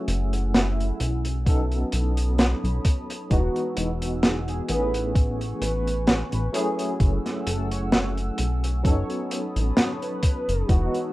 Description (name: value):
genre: vaporwave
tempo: 65 BPM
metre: 4/4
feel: swing 54% on 16ths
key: unclear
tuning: A4 = 440 Hz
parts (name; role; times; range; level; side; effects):
- barky tine electric piano; accompaniment; 0.0-11.1 s; E3 to A4; -29 LUFS; equal; medium tremolo, ensemble chorus
- warbly tape-like pad; sustained chords; 0.0-11.1 s; A3 to E6; -37 LUFS; right 1 dB; chorus, built-in reverb
- chorused synth bass; bass; 0.1-10.9 s; E1 to B1; -25 LUFS; equal; none
- crunchy breakbeat drum kit; drums; 0.1-11.1 s; hi-hat, snare drum; -25 LUFS; equal; none
- warm velvety synth lead; melody; 0.5-11.1 s; E4 to C#5; -33 LUFS; equal; chorus, tape echo
- electronic kick drum; drums; 1.5-10.9 s; none; -20 LUFS; equal; none
room: light reverb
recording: rough home demo mix, cassette tape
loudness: -22 LUFS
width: side -18 dB against mid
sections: 0.0-11.1 A section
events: none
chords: 0.0 F#m9; 1.5 B9; 3.3 Emaj9; 4.7 Amaj9; 6.5 F#m9; 8.8 B9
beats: 0.54 1.47 2.39 | 3.31 4.24 5.16 6.08 | 7.00 7.93 8.85 9.77 | 10.70